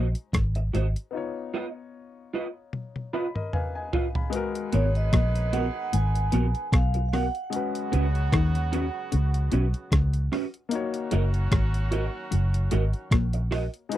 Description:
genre	lovers rock reggae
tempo	75 BPM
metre	4/4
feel	swing 55% on 16ths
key	G# dorian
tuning	A4 = 443 Hz
part	warm grand piano	accompaniment	0.0-14.0 s	G#3 to B5	-34 LUFS	left 6 dB	none
part	electric guitar through a small old amp	riff	0.0-13.4 s	F#2 to D#3	-32 LUFS	left 7 dB	none
part	electric guitar through a small old amp	stabs	0.0-13.6 s	B3 to D#5	-29 LUFS	right 4 dB	ensemble chorus
part	vintage muted fingered electric bass	bass	0.0-13.7 s	F#1 to D#2	-24 LUFS	equal	none
part	detuned 8-bit digital drum machine	drums	0.1-14.0 s	hi-hat, kick drum, rim click, toms	-27 LUFS	equal	none
part	clear horn section	second line	4.3-14.0 s	C#3 to B4	-39 LUFS	right 2 dB	none
part	vibraphone with soft mallets	melody	4.7-9.5 s	C#5 to G#5	-32 LUFS	right 3 dB	tape echo
room	little or no reverb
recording	dry, close 1970s-style studio recording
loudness	-24 LUFS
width	side -13 dB against mid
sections	0.0-4.3 A section; 4.3-14.0 B section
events	break 1.1-4.3; grand piano fill 2.7-4.3; drum fill 2.7-4.3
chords	0.0 G#7; 1.1 C#9; 4.3 G#m9; 7.5 C#7sus4; 10.7 F#6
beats	0.33 | 1.13 1.93 2.73 3.53 | 4.33 5.12 5.92 6.72 | 7.52 8.32 9.12 9.92 | 10.72 11.52 12.31 13.11 | 13.91

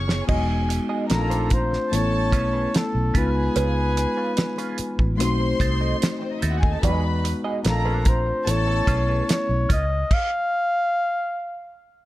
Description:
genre	lush 1970s-style soul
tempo	73 BPM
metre	4/4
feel	straight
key	unclear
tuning	A4 = 440 Hz
part	warm studio violin section	second line	0.0-9.3 s	A#3 to C#6	-30 LUFS	left 1 dB	none
part	bell-like tine electric piano	accompaniment	0.0-9.7 s	F#3 to G#4	-27 LUFS	left 3 dB	phaser
part	direct-recorded clean electric guitar	riff	0.0-9.9 s	C#4 to D#5	-32 LUFS	right 6 dB	wah, spring reverb
part	vintage muted fingered electric bass	bass	0.0-10.0 s	E1 to E2	-24 LUFS	equal	none
part	damped 70s drum kit	drums	0.1-10.3 s	crash cymbal, hi-hat, kick drum, snare drum	-23 LUFS	equal	none
part	vibraphone with soft mallets	texture	0.7-2.3 s	D#4 to B#5	-36 LUFS	right 2 dB	none
part	warm flugelhorn	melody	1.1-11.8 s	A4 to E#5	-25 LUFS	equal	none
room	light reverb, small room ambience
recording	dark, warm production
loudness	-20 LUFS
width	side -16 dB against mid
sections	0.3-12.1 A section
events	drum fill 0.0; stop 10.1-12.1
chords	0.3 Emaj9; 1.1 A#maj9; 1.9 Amaj9; 3.2 C#7; 5.2 B7b9; 6.8 Emaj9; 7.7 A#maj9; 8.5 Amaj9; 9.7 C#7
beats	| 0.29 1.11 1.93 2.74 | 3.56 4.38 5.20 6.01 | 6.83 7.65 8.47 9.29 | 10.11 10.93 11.75

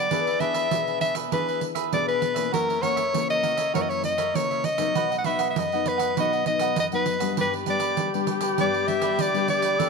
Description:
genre	samba and choro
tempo	99 BPM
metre	4/4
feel	straight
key	unclear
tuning	A4 = 439 Hz
part	bright soprano saxophone	melody	0.0-9.9 s	A#4 to F#5	-25 LUFS	left 1 dB	none
part	cavaquinho	accompaniment	0.0-9.9 s	D4 to F#5	-30 LUFS	right 12 dB	none
part	nylon-string guitar	accompaniment	0.0-9.9 s	F#2 to G#4	-30 LUFS	left 13 dB	none
part	pandeiro	percussion	0.1-9.9 s	none	-31 LUFS	right 14 dB	none
part	mellow tenor saxophone	second line	7.4-9.9 s	G4 to A4	-27 LUFS	left 8 dB	none
room	moderate plate reverb, RT60 3.5 s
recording	1960s-style stereo with parts hard left and right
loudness	-22 LUFS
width	side -4 dB against mid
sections	0.0-9.9 A section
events	none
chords	0.1 E7; 2.5 F#7; 5.0 B; 7.4 G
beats	| 0.11 0.71 1.32 1.93 | 2.53 3.14 3.74 4.35 | 4.95 5.56 6.16 6.77 | 7.37 7.98 8.59 9.19 | 9.80

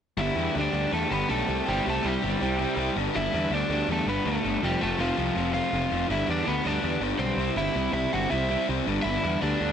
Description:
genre	punk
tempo	162 BPM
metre	4/4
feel	straight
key	G major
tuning	A4 = 440 Hz
part	overdriven electric guitar	melody	0.2-9.7 s	F3 to F#5	-28 LUFS	right 1 dB	none
part	biting overdriven guitar	riff	0.2-9.7 s	F2 to C4	-30 LUFS	left 12 dB	none
part	overdriven electric guitar	riff	0.2-9.7 s	F2 to G4	-31 LUFS	right 14 dB	none
part	fuzz picked electric bass	bass	0.2-9.7 s	F1 to E2	-30 LUFS	equal	overdrive
room	light reverb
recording	none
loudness	-24 LUFS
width	side -8 dB against mid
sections	0.2-9.7 A section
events	none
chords	0.2 G; 1.5 C; 3.0 G; 4.6 F; 6.1 G; 7.4 C; 8.9 G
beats	| 0.19 0.56 0.93 1.30 | 1.67 2.04 2.41 2.78 | 3.15 3.52 3.89 4.26 | 4.63 5.00 5.37 5.73 | 6.10 6.47 6.84 7.21 | 7.58 7.95 8.32 8.69 | 9.05 9.42

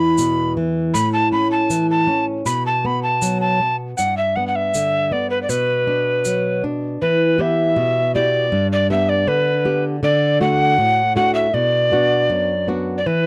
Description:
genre	andean folk, Andean ensemble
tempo	79 BPM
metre	2/4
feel	straight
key	B minor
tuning	A4 = 440 Hz
part	breathy alto recorder	melody	0.0-13.3 s	B4 to B5	-20 LUFS	equal	none
part	flamenco guitar	accompaniment	0.0-13.3 s	E2 to G4	-22 LUFS	equal	none
part	tube shaker	percussion	0.2-6.4 s	none	-30 LUFS	equal	none
room	moderate small room reverb, RT60 0.6 s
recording	dry, close 1970s-style studio recording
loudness	-18 LUFS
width	mono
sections	0.0-7.0 A section; 7.0-13.3 B section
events	none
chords	0.0 E5; 0.9 A; 2.5 B5; 4.0 G; 5.5 Bm; 7.0 Em; 8.5 G; 10.0 D; 11.5 Bm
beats	0.18 | 0.94 1.70 | 2.46 3.22 | 3.98 4.74 | 5.49 6.25 | 7.01 7.77 | 8.52 9.28 | 10.04 10.79 | 11.55 12.30 | 13.06

